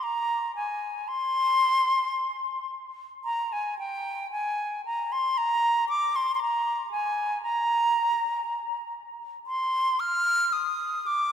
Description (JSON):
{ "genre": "classical, baroque-style fantasia for unaccompanied flute", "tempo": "57 BPM", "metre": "3/4", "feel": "uneven beats, rubato", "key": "unclear", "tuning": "A4 = 440 Hz", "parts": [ { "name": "bright silver concert flute", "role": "solo", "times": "0.0-11.3 s", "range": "G5 to F6", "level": "-24 LUFS", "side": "equal", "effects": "none" } ], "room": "wet cathedral reverb, RT60 4.7 s", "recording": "minimal, uncompressed stereo recording", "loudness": "-24 LUFS", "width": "side -8 dB against mid", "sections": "0.0-11.3 A section", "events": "none", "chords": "none", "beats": "| 0.03 1.09 2.18 | 3.26 4.33 5.39 | 6.43 7.44 8.45 | 9.48 10.54" }